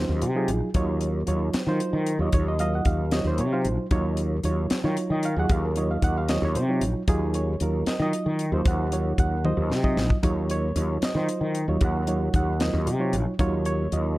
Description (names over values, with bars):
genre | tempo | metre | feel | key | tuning
electric jazz fusion | 76 BPM (dotted quarters) | 6/8 | straight | Eb dorian | A4 = 440 Hz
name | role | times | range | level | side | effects
bright reed electric piano | accompaniment | 0.0-14.2 s | Gb3 to Gb5 | -27 LUFS | right 2 dB | none
fretless electric bass | bass | 0.0-14.2 s | Bb1 to Eb3 | -25 LUFS | equal | analog chorus
tight funk drum kit | drums | 0.2-14.0 s | hi-hat, kick drum, snare drum, toms | -26 LUFS | equal | none
room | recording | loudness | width
light reverb | dark, warm production | -22 LUFS | side -18 dB against mid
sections
0.0-14.2 A section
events
drum fill 9.5-10.2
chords
0.0 Ebm9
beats
| 0.75 1.54 | 2.34 3.13 | 3.92 4.71 | 5.50 6.29 | 7.08 7.87 | 8.66 9.45 | 10.24 11.03 | 11.82 12.61 | 13.40